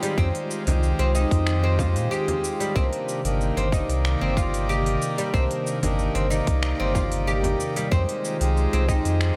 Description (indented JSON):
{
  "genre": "organic downtempo",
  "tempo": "93 BPM",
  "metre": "4/4",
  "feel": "straight",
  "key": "C minor",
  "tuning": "A4 = 440 Hz",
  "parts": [
    { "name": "hand-pumped harmonium", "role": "accompaniment", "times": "0.0-9.4 s", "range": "Ab3 to D5", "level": "-32 LUFS", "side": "equal", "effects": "sidechain pumping, tape echo" },
    { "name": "airy breathy pad", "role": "sustained chords", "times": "0.0-9.4 s", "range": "C3 to F4", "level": "-33 LUFS", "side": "equal", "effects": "chorus, sidechain pumping" },
    { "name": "oud", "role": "arpeggios", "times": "0.0-9.4 s", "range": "G3 to G4", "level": "-30 LUFS", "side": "equal", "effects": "tape echo" },
    { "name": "organic electronic drum kit", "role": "drums", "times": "0.0-9.3 s", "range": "cabasa, finger snaps, hi-hat", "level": "-37 LUFS", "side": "equal", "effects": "overdrive" },
    { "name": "warm sub bass", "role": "bass", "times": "0.2-9.3 s", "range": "G1 to Bb2", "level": "-26 LUFS", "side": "equal", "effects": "sidechain pumping" },
    { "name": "electronic kick drum", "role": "drums", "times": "0.2-9.0 s", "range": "none", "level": "-27 LUFS", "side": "equal", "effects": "overdrive" },
    { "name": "frame drum", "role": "percussion", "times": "0.7-7.6 s", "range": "none", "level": "-34 LUFS", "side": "equal", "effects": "none" }
  ],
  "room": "light reverb, digital ambience",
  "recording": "none",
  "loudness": "-23 LUFS",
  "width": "mono",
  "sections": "0.0-9.4 A section",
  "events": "none",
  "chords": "0.0 Fm7; 2.8 Cm7; 7.9 Fm7"
}